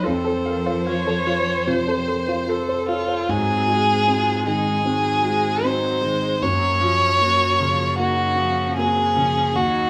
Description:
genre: neoclassical piano and strings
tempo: 76 BPM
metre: 4/4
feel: rubato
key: unclear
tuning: A4 = 440 Hz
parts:
  - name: rich violin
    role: melody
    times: 0.0-9.9 s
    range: F4 to Db5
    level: -23 LUFS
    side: equal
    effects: none
  - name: clear cello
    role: second line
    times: 0.0-9.9 s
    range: F3 to Gb4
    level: -34 LUFS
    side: equal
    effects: none
  - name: rich viola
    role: accompaniment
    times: 0.0-9.9 s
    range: F3 to Db5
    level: -31 LUFS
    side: equal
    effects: none
  - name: warm grand piano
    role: accompaniment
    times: 0.0-9.9 s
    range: Eb2 to F5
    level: -26 LUFS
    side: equal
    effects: none
  - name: analog pluck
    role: arpeggios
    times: 0.0-3.2 s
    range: F4 to F5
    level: -30 LUFS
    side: equal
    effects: chorus
room: moderate large studio reverb, RT60 1.3 s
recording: band playing live in one room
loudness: -20 LUFS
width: mono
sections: 0.0-3.3 A section; 3.3-9.9 B section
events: none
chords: 0.0 F; 3.3 Ab7; 6.4 Gbmaj7

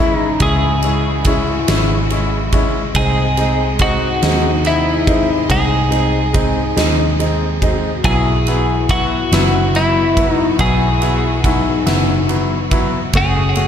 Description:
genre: six-eight pop ballad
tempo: 47 BPM (dotted quarters)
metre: 6/8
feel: straight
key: unclear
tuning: A4 = 440 Hz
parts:
  - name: twelve-string electric guitar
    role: melody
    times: 0.0-13.7 s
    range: E4 to G#4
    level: -19 LUFS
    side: equal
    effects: slapback echo, digital delay
  - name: dark French horn section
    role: second line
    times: 0.0-13.7 s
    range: B#3 to F#4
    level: -23 LUFS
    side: left 6 dB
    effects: digital delay
  - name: clear concert grand piano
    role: accompaniment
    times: 0.0-13.7 s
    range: F#3 to F#4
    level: -21 LUFS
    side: equal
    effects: slapback echo
  - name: clear studio string section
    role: sustained chords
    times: 0.0-13.7 s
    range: A2 to D#5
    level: -25 LUFS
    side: left 1 dB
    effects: none
  - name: vintage muted fingered electric bass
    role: bass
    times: 0.0-13.7 s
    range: F#1 to D#2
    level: -19 LUFS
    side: right 1 dB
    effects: none
  - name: huge arena drum kit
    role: drums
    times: 0.4-13.7 s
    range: kick drum, ride cymbal, snare drum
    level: -19 LUFS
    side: equal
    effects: none
room: moderate concert hall reverb, RT60 2.1 s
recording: big arena sound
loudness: -13 LUFS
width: side -8 dB against mid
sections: 0.0-13.7 A section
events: none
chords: 0.0 C#m; 3.0 G#/B#; 8.0 Bsus4; 13.1 F#m

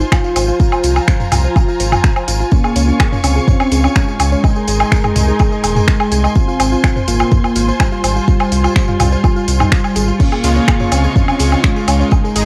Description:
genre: melodic techno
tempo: 125 BPM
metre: 4/4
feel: straight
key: F minor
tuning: A4 = 444 Hz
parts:
  - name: soft octave-layered synth lead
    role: melody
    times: 0.0-12.4 s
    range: G3 to F4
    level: -22 LUFS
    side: equal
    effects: chorus, phaser, sidechain pumping, analog delay
  - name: rich studio string section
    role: sustained chords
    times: 0.0-12.4 s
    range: Eb4 to Db6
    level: -25 LUFS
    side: equal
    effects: sidechain pumping
  - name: soft round pluck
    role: arpeggios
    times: 0.0-12.4 s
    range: Db4 to Ab6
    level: -25 LUFS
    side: equal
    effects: chorus, sidechain pumping, analog delay
  - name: round analog bass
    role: bass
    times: 0.0-12.4 s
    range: Eb1 to Db2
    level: -18 LUFS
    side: equal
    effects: tube saturation, sidechain pumping
  - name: tambourine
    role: percussion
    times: 0.0-12.4 s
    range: none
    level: -31 LUFS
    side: equal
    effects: none
  - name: deep house drum kit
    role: drums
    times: 0.1-12.4 s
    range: crash cymbal, finger snaps, hi-hat, ride cymbal, toms, woodblock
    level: -20 LUFS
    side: equal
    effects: small room ambience
  - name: electronic kick drum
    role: drums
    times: 0.1-12.2 s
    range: none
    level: -16 LUFS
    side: equal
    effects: small room ambience
  - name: sync-sweep polysynth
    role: stabs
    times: 10.4-12.4 s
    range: Db3 to Ab4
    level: -23 LUFS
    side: equal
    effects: chorus, sidechain pumping, analog delay
room: little or no reverb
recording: dry, gritty hardware recording, cassette tape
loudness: -14 LUFS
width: mono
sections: 0.0-12.4 A section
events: none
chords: 0.0 Fm/Ab; 2.5 Db; 4.4 Abadd9; 6.4 Fm/Ab; 10.2 Db

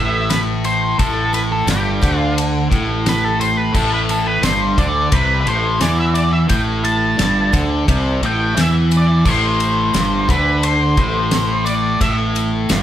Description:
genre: psychedelic rock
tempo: 87 BPM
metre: 4/4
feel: straight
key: A minor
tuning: A4 = 442 Hz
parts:
  - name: octave-fuzz lead guitar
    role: melody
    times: 0.0-12.1 s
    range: G4 to A5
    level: -19 LUFS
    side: left 1 dB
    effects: distortion
  - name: cranked stack guitar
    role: riff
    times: 0.0-12.8 s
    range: G2 to E3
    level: -18 LUFS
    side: equal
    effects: overdrive
  - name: fretless electric bass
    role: bass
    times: 0.0-12.8 s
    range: G1 to E2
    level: -21 LUFS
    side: equal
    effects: none
  - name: damped 70s drum kit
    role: drums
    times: 0.3-12.8 s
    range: crash cymbal, kick drum, ride cymbal, snare drum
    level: -21 LUFS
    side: equal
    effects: none
  - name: tambourine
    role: percussion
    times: 0.3-12.8 s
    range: none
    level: -35 LUFS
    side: right 4 dB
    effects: none
room: moderate large studio reverb, RT60 0.9 s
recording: band playing live in one room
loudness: -14 LUFS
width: side -11 dB against mid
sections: 0.0-12.8 A section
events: lead electric guitar solo 0.0-12.8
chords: 0.0 Am

